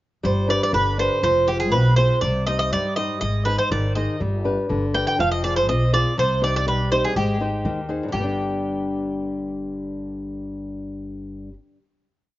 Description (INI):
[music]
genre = greek folk, Greek bouzouki band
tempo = 122 BPM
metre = 2/4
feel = straight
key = G phrygian dominant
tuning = A4 = 436 Hz
[part]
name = Greek bouzouki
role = melody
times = 0.2-11.5 s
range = G4 to G5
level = -22 LUFS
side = right 1 dB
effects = slapback echo
[part]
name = nylon-string guitar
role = accompaniment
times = 0.2-11.6 s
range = G2 to C5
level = -26 LUFS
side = left 2 dB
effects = slapback echo
[part]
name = upright bass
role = bass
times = 0.2-11.5 s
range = F1 to G2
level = -24 LUFS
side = equal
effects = none
[sound]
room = little or no reverb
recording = recorded outdoors, with no room sound, nothing above 7.5 kHz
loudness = -19 LUFS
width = side -15 dB against mid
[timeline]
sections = 0.2-8.1 A section; 8.1-10.1 final chord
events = none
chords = 0.2 G; 1.2 Fm; 2.2 Cm; 3.2 Ab; 4.2 G; 5.2 Fm; 6.2 Cm; 7.2 Ab; 8.1 G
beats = | 0.23 0.73 | 1.23 1.73 | 2.23 2.72 | 3.22 3.71 | 4.21 4.70 | 5.19 5.68 | 6.18 6.67 | 7.16 7.64 | 8.13 8.62 | 9.10 9.59